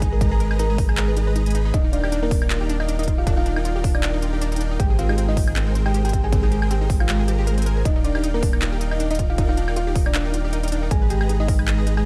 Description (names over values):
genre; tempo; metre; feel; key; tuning
future bass; 157 BPM; 4/4; swing 55% on 16ths, half-time; Eb major; A4 = 440 Hz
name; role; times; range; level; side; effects
thumb-piano-like synth pluck; melody; 0.0-12.1 s; Bb3 to Bb5; -30 LUFS; equal; chorus, sidechain pumping, digital delay
unison pluck; arpeggios; 0.0-12.0 s; C4 to Ab5; -36 LUFS; equal; sidechain pumping, digital delay
dense compressed supersaw; riff; 0.0-12.1 s; Ab3 to Cb6; -30 LUFS; equal; sidechain pumping
saturated sub bass; bass; 0.0-12.1 s; Eb1 to Ab1; -24 LUFS; equal; sidechain pumping
dubstep drum kit; drums; 0.0-12.0 s; handclaps, hi-hat, woodblock; -32 LUFS; equal; small room ambience
electronic kick drum; drums; 0.0-11.6 s; none; -23 LUFS; equal; small room ambience
room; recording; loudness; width
digital ambience; dark, warm production; -21 LUFS; mono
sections
0.0-12.1 A section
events
kick drops out 7.5-7.9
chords
0.0 Abmadd9; 1.7 Ebmaj9; 4.8 Abmaj9; 7.9 Ebmaj9; 10.9 Abmadd9